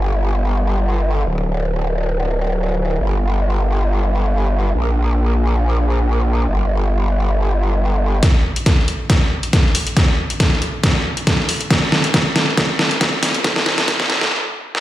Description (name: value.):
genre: heavy wobble dubstep.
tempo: 138 BPM.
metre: 4/4.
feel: swing 54% on 16ths, half-time.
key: unclear.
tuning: A4 = 440 Hz.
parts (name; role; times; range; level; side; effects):
growl bass; bass; 0.0-8.2 s; D1 to Bb1; -16 LUFS; equal; chorus, overdrive.
dubstep drum kit; drums; 8.2-14.8 s; hi-hat, snare drum; -16 LUFS; equal; low-pass filter on snare, low-pass filter on hats, low-pass filter on room.
electronic kick drum; drums; 8.2-14.0 s; none; -17 LUFS; equal; none.
room: light reverb.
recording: played on a big sound system in a bare room, large studio reverb, high-pass filter.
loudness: -15 LUFS.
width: side -14 dB against mid.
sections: 0.0-8.2 A section; 8.2-14.8 B section.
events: build-up 8.2-14.8; drum fill 8.2-14.3; filter sweep 8.2-14.8; stop 14.3-14.8.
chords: none.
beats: 0.40 0.84 | 1.27 1.71 2.14 2.58 | 3.01 3.44 3.88 4.32 | 4.75 5.18 5.62 6.05 | 6.49 6.92 7.36 7.79 | 8.23 8.66 9.10 9.53 | 9.97 10.40 10.84 11.27 | 11.71 12.14 12.57 13.01 | 13.45 13.88 14.31 14.75.